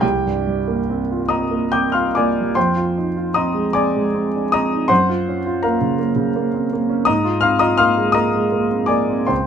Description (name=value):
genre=classical, impressionist solo piano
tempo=46-56 BPM (dotted quarters)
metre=6/8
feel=rubato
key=F dorian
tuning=A4 = 440 Hz
part: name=warm concert grand piano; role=solo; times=0.0-9.5 s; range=C2 to G6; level=-16 LUFS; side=equal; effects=none
room=light reverb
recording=none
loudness=-16 LUFS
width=side -8 dB against mid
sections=0.0-2.6 A section; 2.6-9.5 B section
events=none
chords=0.0 C7sus4; 2.6 Fm7; 4.9 Gbmaj7; 7.1 Ab69